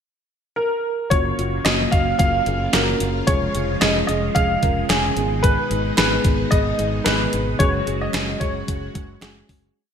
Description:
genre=1980s-style pop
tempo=111 BPM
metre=4/4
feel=swing 55% on 16ths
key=unclear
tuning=A4 = 440 Hz
part: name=warm baby grand piano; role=melody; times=0.6-9.4 s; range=G#4 to E#5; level=-22 LUFS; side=left 1 dB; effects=analog chorus, digital delay
part: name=mellow FM electric piano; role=accompaniment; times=1.1-9.8 s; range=G#3 to A#4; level=-26 LUFS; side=right 1 dB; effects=chorus
part: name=string machine, full ensemble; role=sustained chords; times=1.1-9.7 s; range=B2 to F#4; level=-29 LUFS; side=equal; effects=phaser, ensemble chorus
part: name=fretless electric bass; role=bass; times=1.1-9.7 s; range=E#1 to G#1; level=-25 LUFS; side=equal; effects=none
part: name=gated 80s digital drum machine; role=drums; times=1.1-9.6 s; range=hi-hat, kick drum, snare drum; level=-20 LUFS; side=equal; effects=gated reverb, gated reverb snare, overdrive
part: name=group handclap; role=percussion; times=1.7-9.4 s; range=none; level=-34 LUFS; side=right 7 dB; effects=none
room=moderate lush hall reverb, RT60 1.8 s, digital ambience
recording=bright 1980s-style digital production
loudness=-17 LUFS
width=side -7 dB against mid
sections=0.0-1.1 pickup bar; 1.1-9.8 pre-chorus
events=fade-out 7.6-9.8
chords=0.0 N.C.; 1.1 F#maj7; 3.3 C#/E#; 5.2 G#m; 7.6 F#sus2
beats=0.04 0.58 | 1.12 1.66 2.20 2.74 | 3.28 3.82 4.36 4.90 | 5.44 5.98 6.52 7.06 | 7.60 8.14 8.68 9.22

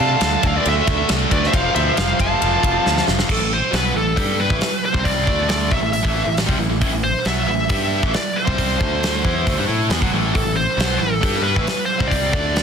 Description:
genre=hard rock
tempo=136 BPM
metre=4/4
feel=straight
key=A minor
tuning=A4 = 440 Hz
part: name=high-gain lead guitar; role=melody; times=0.0-12.6 s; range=A4 to A5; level=-22 LUFS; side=equal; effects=distortion
part: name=bluesy overdriven lead guitar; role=second line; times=0.0-3.0 s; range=A4 to F5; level=-26 LUFS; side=right 4 dB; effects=distortion
part: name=tight distorted guitar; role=riff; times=0.0-12.6 s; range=F2 to A4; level=-22 LUFS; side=left 1 dB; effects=distortion
part: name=modern bright picked electric bass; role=bass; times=0.0-12.6 s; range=F1 to C3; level=-23 LUFS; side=equal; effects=none
part: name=big rock drum kit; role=drums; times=0.2-12.6 s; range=crash cymbal, hi-hat, kick drum, ride cymbal, snare drum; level=-21 LUFS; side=right 1 dB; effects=soft clipping on kick
room=studio ambience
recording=dense, heavily limited modern master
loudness=-16 LUFS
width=side -7 dB against mid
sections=0.0-3.3 A section; 3.3-12.6 B section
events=drum fill 2.8-3.3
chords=0.0 Dm; 1.5 F; 3.3 Am; 5.3 D5; 5.7 Am; 8.8 D5; 9.2 Am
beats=0.21 0.65 1.09 | 1.53 1.97 2.40 2.85 | 3.29 3.73 4.17 4.61 | 5.05 5.49 5.93 6.38 | 6.82 7.26 7.70 8.14 | 8.58 9.03 9.47 9.91 | 10.35 10.79 11.23 11.67 | 12.12 12.56

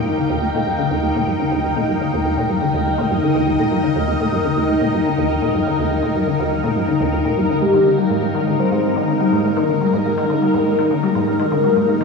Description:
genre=ambient, sequencer-driven space music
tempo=123 BPM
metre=4/4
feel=straight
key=Eb major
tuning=A4 = 440 Hz
part: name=lush unison pad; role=sustained chords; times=0.0-12.0 s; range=Ab3 to G5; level=-18 LUFS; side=equal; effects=chorus, phaser, shimmer reverb
part: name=resonant blip pluck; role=riff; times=0.1-12.0 s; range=Eb2 to G3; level=-20 LUFS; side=left 2 dB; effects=chorus, shimmer reverb, tape echo
part: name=soft octave-layered synth lead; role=melody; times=7.6-12.0 s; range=G4 to C5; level=-20 LUFS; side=left 2 dB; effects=chorus, phaser, tape echo
room=wet spring reverb, RT60 2.7 s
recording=echo-heavy mix, small room ambience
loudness=-16 LUFS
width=side -4 dB against mid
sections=0.0-12.0 A section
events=filter sweep on synth arpeggio sound 0.0-12.0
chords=0.0 Eb; 7.6 Ab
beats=0.30 0.79 1.27 | 1.76 2.25 2.74 3.23 | 3.71 4.20 4.69 5.18 | 5.67 6.15 6.64 7.13 | 7.62 8.10 8.59 9.08 | 9.57 10.06 10.54 11.03 | 11.52 12.01

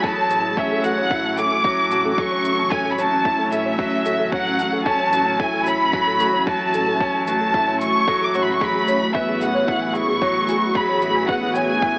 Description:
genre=piano and strings electronica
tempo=112 BPM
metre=4/4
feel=straight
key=A major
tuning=A4 = 440 Hz
part: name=rich chamber violin section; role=melody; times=0.0-12.0 s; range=E5 to D6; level=-22 LUFS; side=equal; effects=cassette tape, shimmer reverb
part: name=granular cloud pad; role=sustained chords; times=0.0-12.0 s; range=A3 to G#4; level=-30 LUFS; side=equal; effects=built-in reverb, sidechain pumping, cassette tape, shimmer reverb
part: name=soft round pluck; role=arpeggios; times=0.0-12.0 s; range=G#4 to A5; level=-31 LUFS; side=equal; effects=subtle chorus, sidechain pumping, cassette tape, analog delay, shimmer reverb
part: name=bright concert grand piano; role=riff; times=0.0-12.0 s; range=F#3 to F#4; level=-26 LUFS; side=equal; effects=cassette tape, shimmer reverb
part: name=dark detuned saw bass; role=bass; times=0.0-12.0 s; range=A1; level=-37 LUFS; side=equal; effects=sidechain pumping
part: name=electronic kick drum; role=drums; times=0.0-11.9 s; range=none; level=-30 LUFS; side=equal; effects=overdrive, cassette tape
part: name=shaker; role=drums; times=0.3-11.7 s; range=none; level=-42 LUFS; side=equal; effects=overdrive, high-pass filter on perc, cassette tape
room=wet booth ambience, RT60 0.2 s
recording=home recording on cassette, AM radio sound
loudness=-20 LUFS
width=mono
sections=0.0-12.0 A section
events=drop 0.0-12.0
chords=0.0 A6; 8.6 Eadd9/A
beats=| 0.04 0.57 1.11 1.65 | 2.18 2.72 3.25 3.79 | 4.33 4.86 5.40 5.93 | 6.47 7.00 7.54 8.07 | 8.61 9.15 9.68 10.22 | 10.75 11.29 11.82

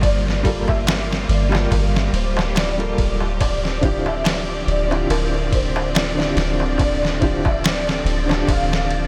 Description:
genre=trip hop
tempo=71 BPM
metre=4/4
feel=swing 56% on 16ths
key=G dorian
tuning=A4 = 440 Hz
part: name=felt-muted upright piano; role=melody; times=0.0-9.1 s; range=Bb4 to F5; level=-29 LUFS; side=equal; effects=ensemble chorus, tape echo
part: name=felt-muted upright piano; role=accompaniment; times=0.0-9.1 s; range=D3 to Bb4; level=-28 LUFS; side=equal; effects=tremolo, tape echo
part: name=bright symphonic string section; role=sustained chords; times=0.0-9.1 s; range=D3 to D5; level=-29 LUFS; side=equal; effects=none
part: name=soft 808-style bass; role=bass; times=0.0-9.1 s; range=D1 to G1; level=-25 LUFS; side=equal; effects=none
part: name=trip hop sampler-style drum kit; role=drums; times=0.0-9.1 s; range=kick drum, ride cymbal, snare drum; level=-24 LUFS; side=equal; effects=none
part: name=darbuka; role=percussion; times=0.0-8.9 s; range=none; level=-34 LUFS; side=equal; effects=none
part: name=wind-like tuned noise texture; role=texture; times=0.0-9.1 s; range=D5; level=-37 LUFS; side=equal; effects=none
room=moderate huge ambient reverb, RT60 6.7 s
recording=dreamy mix soaked in reverb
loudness=-20 LUFS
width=mono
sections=0.0-9.1 A section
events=none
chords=0.0 Gm9; 3.4 Dm11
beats=| 0.03 0.88 1.72 2.57 | 3.41 4.26 5.10 5.95 | 6.79 7.64 8.48

